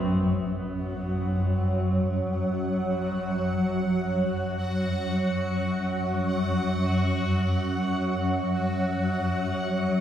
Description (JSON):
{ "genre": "dark ambient drone", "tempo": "free time", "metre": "none", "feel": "none", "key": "unclear", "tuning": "A4 = 440 Hz", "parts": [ { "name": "deep dark ambient pad", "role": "sustained chords", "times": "0.0-0.6, 9.7-10.0 s", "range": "F#3 to B4", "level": "-34 LUFS", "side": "right 2 dB", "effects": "chorus, built-in reverb" }, { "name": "carillon bells", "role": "arpeggios", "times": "0.0-0.8 s", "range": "A2", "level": "-48 LUFS", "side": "equal", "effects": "none" }, { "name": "swarming drone", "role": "drone", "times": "0.0-10.0 s", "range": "F#2 to F#3", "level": "-25 LUFS", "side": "equal", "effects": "built-in reverb" }, { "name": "bubbling stepped-filter texture", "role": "texture", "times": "0.8-10.0 s", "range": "F#4 to F#5", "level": "-33 LUFS", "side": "equal", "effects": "chorus, built-in reverb, shimmer reverb" } ], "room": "wet echo chamber reverb, RT60 2.4 s", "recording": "echo-heavy mix", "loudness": "-24 LUFS", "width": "side -10 dB against mid", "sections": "0.6-10.0 A section", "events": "none", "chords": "0.0 B7(no3); 0.6 N.C." }